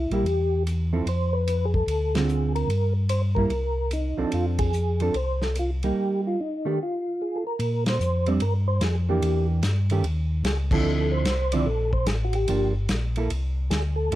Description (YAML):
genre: soul jazz organ trio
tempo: 147 BPM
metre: 4/4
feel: swing 65% on 8ths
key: F major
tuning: A4 = 440 Hz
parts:
  - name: percussive tonewheel organ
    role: melody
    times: 0.0-14.2 s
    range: Eb4 to D5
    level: -27 LUFS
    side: equal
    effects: slow rotary speaker, chorus vibrato, plate reverb
  - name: mellow tonewheel organ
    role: bass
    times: 0.0-14.2 s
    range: G1 to Bb2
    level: -24 LUFS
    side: equal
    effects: slow rotary speaker
  - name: hollow-body jazz guitar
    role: accompaniment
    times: 0.1-14.2 s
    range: D3 to A4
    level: -26 LUFS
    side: right 4 dB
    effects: none
  - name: warm soul drum kit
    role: drums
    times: 0.1-14.2 s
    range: crash cymbal, hi-hat, kick drum, ride cymbal, snare drum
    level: -30 LUFS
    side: equal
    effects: none
room: light reverb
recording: dark, warm production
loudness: -22 LUFS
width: side -14 dB against mid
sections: 0.0-7.6 A section; 7.6-14.2 B section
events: band accent 2.1, 4.5, 7.8, 10.7; break 6.0-7.6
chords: 0.0 C7 (rootless); 1.1 F(b5, no3); 1.9 Dm7; 2.7 Gm; 3.5 Cm13; 4.3 F6; 6.0 Ebmaj7#11; 6.8 N.C.; 7.6 Bb69; 9.2 Em7b5; 10.0 Dbmaj9; 10.9 Dm9; 12.5 Gm7; 13.3 Csus2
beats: 0.25 0.66 | 1.07 1.48 1.88 2.29 | 2.70 3.11 3.52 3.92 | 4.33 4.74 5.15 5.56 | 5.96 6.37 6.78 7.19 | 7.60 8.01 8.41 8.82 | 9.23 9.64 10.04 10.45 | 10.86 11.27 11.67 12.08 | 12.49 12.89 13.30 13.71 | 14.12